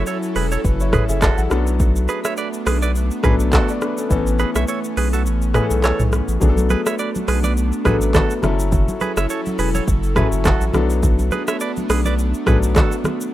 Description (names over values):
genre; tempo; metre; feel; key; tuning
afrobeats; 104 BPM; 4/4; swing 55% on 16ths; B dorian; A4 = 440 Hz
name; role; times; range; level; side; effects
warm grand piano; accompaniment; 0.0-13.3 s; E3 to F#5; -24 LUFS; left 4 dB; none
airy breathy pad; sustained chords; 0.0-13.3 s; F#3 to A4; -26 LUFS; right 1 dB; chorus
direct-recorded clean electric guitar; riff; 0.0-12.9 s; F#4 to E5; -26 LUFS; right 6 dB; digital delay
saturated sub bass; bass; 0.0-12.8 s; E1 to B1; -19 LUFS; equal; none
afro-pop drum kit; drums; 0.1-13.3 s; handclaps, hi-hat, kick drum, rim click, shaker, toms; -20 LUFS; equal; none
congas; percussion; 6.4-13.2 s; none; -26 LUFS; right 1 dB; none
room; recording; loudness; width
digital ambience; rough home demo mix; -16 LUFS; side -14 dB against mid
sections
0.0-13.3 A section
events
kick muted 5.3-6.4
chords
0.0 F#m7; 1.5 Bm7; 4.1 Aadd9; 6.4 Bm7; 8.4 F#m7; 10.7 Bm7